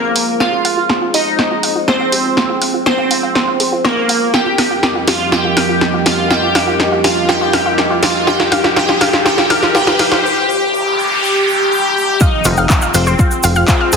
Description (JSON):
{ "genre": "melodic techno", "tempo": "122 BPM", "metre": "4/4", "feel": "straight", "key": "F minor", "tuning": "A4 = 441 Hz", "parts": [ { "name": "resonant sweep polysynth", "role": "melody", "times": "0.0-14.0 s", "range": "Bb3 to G4", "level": "-16 LUFS", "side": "equal", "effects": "chorus, phaser, sidechain pumping, digital delay" }, { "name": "glassy wavetable pluck", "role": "second line", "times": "0.0-14.0 s", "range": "Bb4 to G5", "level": "-22 LUFS", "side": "right 1 dB", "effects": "chorus, sidechain pumping, digital delay" }, { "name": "dark analog pad", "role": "sustained chords", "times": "0.0-14.0 s", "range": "F3 to Eb5", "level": "-23 LUFS", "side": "right 1 dB", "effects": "chorus, sidechain pumping" }, { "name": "analog pluck", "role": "arpeggios", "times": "0.2-14.0 s", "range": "F4 to F6", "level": "-20 LUFS", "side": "equal", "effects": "chorus, cassette tape, sidechain pumping, digital delay" }, { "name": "punchy analog drum machine", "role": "drums", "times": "0.2-14.0 s", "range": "handclaps, hi-hat, snare drum, woodblock", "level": "-16 LUFS", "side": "equal", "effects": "none" }, { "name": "riser, noise sweep and impact", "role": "sound effects", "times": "7.0-14.0 s", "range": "none", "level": "-22 LUFS", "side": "equal", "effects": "none" }, { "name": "electronic kick drum", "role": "drums", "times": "12.2-13.8 s", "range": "none", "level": "-13 LUFS", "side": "equal", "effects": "overdrive" }, { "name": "cabasa", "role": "percussion", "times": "12.2-14.0 s", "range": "none", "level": "-22 LUFS", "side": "left 2 dB", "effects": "none" }, { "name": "plucky analog bass", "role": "bass", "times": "12.5-14.0 s", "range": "F1 to F2", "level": "-14 LUFS", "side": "equal", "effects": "sidechain pumping" } ], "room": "wet lush hall reverb, RT60 1.8 s", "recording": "heavily compressed radio sound", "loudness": "-11 LUFS", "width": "side -5 dB against mid", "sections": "0.0-12.2 A section; 12.2-14.0 B section", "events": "build-up 0.0-12.2; drum fill 0.0-10.2; filter sweep on synth arpeggio sound 0.0-12.2; riser 7.0-10.2; noise sweep 10.2-12.2; drop 12.2-14.0; impact 12.2-14.0", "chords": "0.0 Fm; 4.3 Ebadd9/F; 12.2 Fm" }